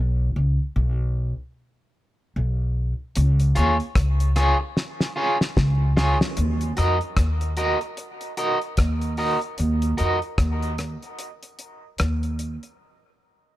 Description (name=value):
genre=dub reggae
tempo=75 BPM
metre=4/4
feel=swing 60% on 16ths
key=Eb minor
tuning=A4 = 440 Hz
part: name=upright bass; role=bass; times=0.0-12.6 s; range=B1 to F2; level=-21 LUFS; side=equal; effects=none
part: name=cloth-damped thuddy drum kit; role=drums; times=3.2-12.8 s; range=hi-hat, kick drum, rim click, snare drum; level=-25 LUFS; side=left 1 dB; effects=none
part: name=electric guitar at the edge of break-up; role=accompaniment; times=3.6-10.2 s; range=F4 to Eb5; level=-25 LUFS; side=equal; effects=tremolo, dub echo
room=small room reverb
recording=none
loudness=-20 LUFS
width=side -15 dB against mid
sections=0.0-6.4 A section; 6.4-12.8 B section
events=break 0.0-3.2, 9.6-12.8; drum fill 4.8-6.4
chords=0.0 N.C.; 3.2 Db; 6.4 Ebm